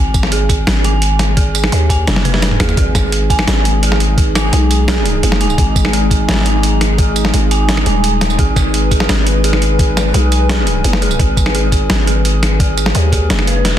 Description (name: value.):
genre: half-time drum and bass.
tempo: 171 BPM.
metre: 4/4.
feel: half-time.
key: G# minor.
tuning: A4 = 440 Hz.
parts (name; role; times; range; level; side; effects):
dark detuned synth bell; arpeggios; 0.0-13.8 s; G#4 to G#5; -22 LUFS; right 4 dB; chorus, phaser, vintage 12-bit sampler grit, dub echo.
growling 808-style bass; bass; 0.0-13.8 s; D#1 to D#2; -15 LUFS; equal; tube saturation.
boom bap sampler-style drum kit; drums; 0.1-13.7 s; hi-hat, snare drum, tambourine, toms; -17 LUFS; equal; soft clipping on snare.
electronic kick drum; drums; 0.1-13.2 s; none; -14 LUFS; equal; none.
dark analog pad; sustained chords; 2.8-13.8 s; G#3 to B4; -21 LUFS; left 2 dB; chorus, sidechain pumping.
metallic inharmonic drone; texture; 3.2-13.8 s; G#4; -25 LUFS; equal; chorus, built-in reverb.
room: light reverb.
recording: dense, heavily limited modern master.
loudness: -11 LUFS.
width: side -11 dB against mid.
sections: 0.0-13.8 A section.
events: drum fill 2.1-2.8.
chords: 0.0 G#5.